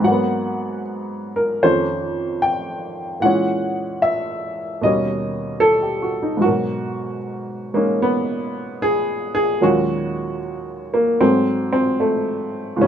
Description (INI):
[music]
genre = solo jazz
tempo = 75 BPM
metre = 4/4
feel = swing 66% on 8ths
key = G# minor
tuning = A4 = 440 Hz
[part]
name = warm upright piano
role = solo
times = 0.0-12.9 s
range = C#2 to G5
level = -18 LUFS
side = equal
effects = none
[sound]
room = light reverb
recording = minimal, uncompressed stereo recording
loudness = -18 LUFS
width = side -9 dB against mid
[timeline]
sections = 0.0-6.4 A section; 6.4-12.9 A section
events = none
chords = 0.0 G#m9; 1.6 F7b13; 3.2 A#m7b5; 4.8 D#aug7; 6.4 G#m9; 9.6 D#m7; 11.2 G#7b9